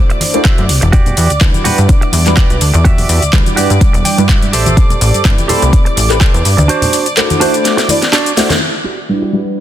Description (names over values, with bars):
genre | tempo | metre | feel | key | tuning
filtered disco house | 125 BPM | 4/4 | swing 55% on 16ths | E minor | A4 = 441 Hz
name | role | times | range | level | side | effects
dark grand piano | accompaniment | 0.0-9.6 s | G3 to B5 | -16 LUFS | equal | phaser, sidechain pumping, low-pass filter
clear studio violin section | sustained chords | 0.0-9.6 s | D5 to D6 | -20 LUFS | right 1 dB | sidechain pumping, low-pass filter
direct-recorded clean electric guitar | riff | 0.1-9.6 s | D4 to G5 | -19 LUFS | right 5 dB | sidechain pumping, low-pass filter
house drum kit | drums | 0.1-8.6 s | handclaps, hi-hat, shaker, snare drum | -16 LUFS | left 1 dB | sidechain pumping on hats, low-pass filter on hats, small room reverb, low-pass filter on snare, sidechain pumping on perc, low-pass filter on perc
tambourine and congas | percussion | 0.1-8.6 s | none | -21 LUFS | left 2 dB | sidechain pumping on perc, low-pass filter on perc
electronic kick drum | drums | 0.5-6.3 s | none | -10 LUFS | equal | small room reverb
plucky analog bass | bass | 0.6-6.7 s | E1 to G2 | -13 LUFS | equal | sidechain pumping, low-pass filter
room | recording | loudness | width
light reverb | dense, heavily limited modern master | -9 LUFS | side -12 dB against mid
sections
0.0-8.6 A section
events
clean electric guitar fill 3.8-4.8; kick drops out 6.7-8.6; drum fill 7.7-8.6; band accent 8.5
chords
0.0 D7; 0.9 Em9; 4.5 Am7; 6.7 D7; 8.6 Em9